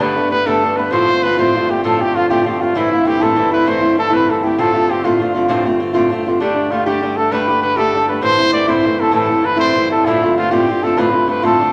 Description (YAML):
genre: celtic folk, Celtic slide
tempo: 131 BPM (dotted quarters)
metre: 12/8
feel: straight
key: G mixolydian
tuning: A4 = 441 Hz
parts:
  - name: warm trumpet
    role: melody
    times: 0.0-11.7 s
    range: D4 to D5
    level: -20 LUFS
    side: equal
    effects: none
  - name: baroque flute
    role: second line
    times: 0.0-11.7 s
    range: D5 to D6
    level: -24 LUFS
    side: equal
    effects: none
  - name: fingerpicked acoustic archtop guitar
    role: accompaniment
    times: 0.0-11.7 s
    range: D2 to G4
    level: -18 LUFS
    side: equal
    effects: none
  - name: pedal harmonium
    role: drone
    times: 0.0-11.7 s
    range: G2 to D3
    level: -30 LUFS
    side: equal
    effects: none
room: wet large studio reverb, RT60 1.1 s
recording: none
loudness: -15 LUFS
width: mono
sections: 0.0-11.7 A section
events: none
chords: 0.0 Gadd9; 0.9 F; 2.8 Am; 4.6 Dm7; 6.4 Gsus2; 8.2 Am; 10.1 Dm7